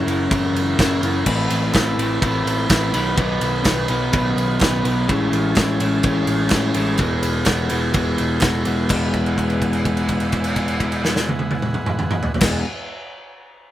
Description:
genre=indie rock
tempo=126 BPM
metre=4/4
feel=straight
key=E major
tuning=A4 = 440 Hz
part: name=combo organ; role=sustained chords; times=0.0-12.6 s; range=D#4 to B5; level=-30 LUFS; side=right 1 dB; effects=spring reverb
part: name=electric guitar through a small old amp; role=riff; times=0.0-12.6 s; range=F#2 to B4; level=-21 LUFS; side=left 1 dB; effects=none
part: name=picked electric bass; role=bass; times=0.0-12.6 s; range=E1 to A2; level=-26 LUFS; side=equal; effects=none
part: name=loose indie drum kit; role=drums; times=0.1-12.5 s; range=crash cymbal, kick drum, ride cymbal, snare drum, toms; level=-21 LUFS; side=right 1 dB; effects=none
part: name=group handclap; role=percussion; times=1.7-9.1 s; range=none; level=-33 LUFS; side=right 2 dB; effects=none
room=little or no reverb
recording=none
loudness=-17 LUFS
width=side -13 dB against mid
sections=0.0-8.9 A section; 8.9-12.7 B section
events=held note 8.9-12.4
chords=0.0 F#7; 1.3 Amadd9; 2.9 B; 5.1 Amaj7; 7.0 Eadd9

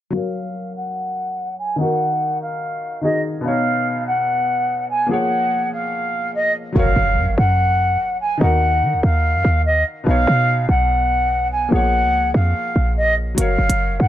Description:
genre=hip hop, drill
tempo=145 BPM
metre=4/4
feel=half-time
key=unclear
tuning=A4 = 440 Hz
part: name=mellow concert flute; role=melody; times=0.1-14.1 s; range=Eb5 to Ab5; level=-19 LUFS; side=equal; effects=low-pass filter
part: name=felt-muted upright piano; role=accompaniment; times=0.1-14.1 s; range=B2 to Db5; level=-25 LUFS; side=left 2 dB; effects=low-pass filter
part: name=short 808-style bass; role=bass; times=6.8-14.1 s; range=F1 to Eb3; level=-18 LUFS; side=equal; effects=none
part: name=impact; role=sound effects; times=6.8-8.4 s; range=none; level=-27 LUFS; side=equal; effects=none
part: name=electronic hi-hat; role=drums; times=13.4-13.8 s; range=none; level=-23 LUFS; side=right 3 dB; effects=none
room=little or no reverb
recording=dry, gritty hardware recording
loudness=-16 LUFS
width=side -12 dB against mid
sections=0.1-6.8 A section; 6.8-14.1 B section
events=filter sweep 0.1-6.8; impact 6.8-8.4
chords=0.1 Gb; 1.8 Ebm; 3.4 Badd9; 5.1 Bbm7; 6.8 Gb; 8.4 Ebm; 10.1 Badd9; 11.7 Bbm7; 13.4 Gb

